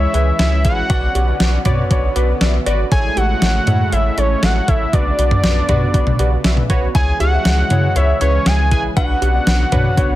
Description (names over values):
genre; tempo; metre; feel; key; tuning
synth-pop; 119 BPM; 4/4; straight; B dorian; A4 = 440 Hz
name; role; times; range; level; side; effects
fat analog lead; melody; 0.0-10.2 s; C#5 to G#5; -20 LUFS; equal; none
warm concert grand piano; second line; 0.0-2.8, 7.0-10.2 s; B4 to G#5; -25 LUFS; left 4 dB; digital delay
warm analog keys; accompaniment; 0.0-10.2 s; D4 to E5; -25 LUFS; right 1 dB; chorus
lush unison pad; sustained chords; 0.0-10.2 s; C#3 to C#4; -26 LUFS; equal; chorus
round analog bass; bass; 0.0-10.2 s; G#1 to C#3; -17 LUFS; equal; none
clean 12-bit digital drum machine; drums; 0.1-10.1 s; cowbell, hi-hat, kick drum, snare drum, toms; -18 LUFS; equal; overdrive
room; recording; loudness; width
light reverb; dense, heavily limited modern master; -13 LUFS; side -15 dB against mid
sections
0.0-10.2 A section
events
none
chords
0.0 C#m; 0.9 Bmadd9; 2.9 Amaj7; 4.9 Bmadd9; 7.0 C#m; 9.0 Bmadd9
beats
0.40 | 0.90 1.40 1.91 2.41 | 2.92 3.42 3.92 4.43 | 4.93 5.44 5.94 6.45 | 6.95 7.45 7.96 8.46 | 8.97 9.47 9.97